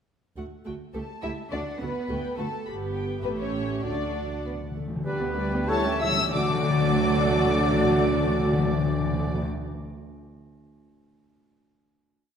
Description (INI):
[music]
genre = quick classical-period movement for symphony orchestra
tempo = 89-106 BPM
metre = 2/4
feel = straight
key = D major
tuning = A4 = 440 Hz
[part]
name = warm chamber violin section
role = melody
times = 0.4-9.4 s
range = E5 to E6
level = -33 LUFS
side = left 5 dB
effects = none
[part]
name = dark chamber viola section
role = accompaniment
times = 0.4-9.4 s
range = G3 to G4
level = -31 LUFS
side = right 3 dB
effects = none
[part]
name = dark studio double bass section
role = bass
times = 0.4-9.4 s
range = G1 to D2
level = -34 LUFS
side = right 3 dB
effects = none
[part]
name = dark studio violin section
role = second line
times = 0.9-9.4 s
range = F#4 to E5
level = -33 LUFS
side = left 2 dB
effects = none
[part]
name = warm chamber cello section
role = bass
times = 0.9-9.4 s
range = D2 to E4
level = -33 LUFS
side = equal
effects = none
[part]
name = timpani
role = percussion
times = 3.8-9.4 s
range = D3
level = -28 LUFS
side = left 3 dB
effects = none
[part]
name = warm French horn section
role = sustained chords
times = 5.0-9.4 s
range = B3 to G4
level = -31 LUFS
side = equal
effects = none
[part]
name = clear oboe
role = second line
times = 5.1-9.4 s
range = B4 to D5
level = -33 LUFS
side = equal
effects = none
[part]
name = dark bassoon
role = accompaniment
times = 5.1-9.4 s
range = F#3 to G3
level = -32 LUFS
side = right 2 dB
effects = none
[part]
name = silver concert flute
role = second line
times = 5.7-9.4 s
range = A4 to E5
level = -34 LUFS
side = left 2 dB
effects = none
[sound]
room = wet scoring stage reverb, RT60 1.7 s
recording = none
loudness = -23 LUFS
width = side -7 dB against mid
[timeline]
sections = 0.4-5.1 A section; 5.1-6.3 coda; 6.3-9.0 final chord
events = slowing down 3.2-6.3; timpani fill 3.8-5.1, 5.7-6.3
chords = 0.4 D; 0.9 A7/C#; 1.5 D; 2.7 G; 3.2 A7; 3.8 D; 5.1 G/D; 5.7 A7/D; 6.3 D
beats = | 0.36 0.94 | 1.52 2.09 | 2.66 3.24 | 3.83 4.44 | 5.06 5.68 | 6.34 7.01 | 7.68 8.35